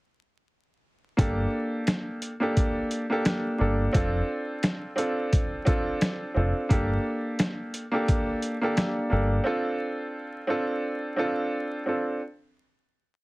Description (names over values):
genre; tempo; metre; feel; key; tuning
hip hop, boom-bap hip-hop; 87 BPM; 4/4; swing 57% on 16ths; D minor; A4 = 440 Hz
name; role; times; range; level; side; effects
clear upright piano; accompaniment; 1.2-12.2 s; Bb3 to A4; -27 LUFS; right 1 dB; cassette tape, high-pass filter, low-pass filter
deep dub fingered electric bass; bass; 1.2-9.4 s; F1 to G1; -26 LUFS; equal; none
boom bap sampler-style drum kit; drums; 1.2-9.0 s; hi-hat, kick drum, snare drum; -25 LUFS; equal; vintage 12-bit sampler grit
room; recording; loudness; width
light reverb; heavily compressed radio sound, vinyl crackle; -24 LUFS; side -21 dB against mid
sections
1.2-12.2 verse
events
none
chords
1.2 Gmadd9; 3.9 Dm7/F; 6.7 Gmadd9; 9.5 Dm7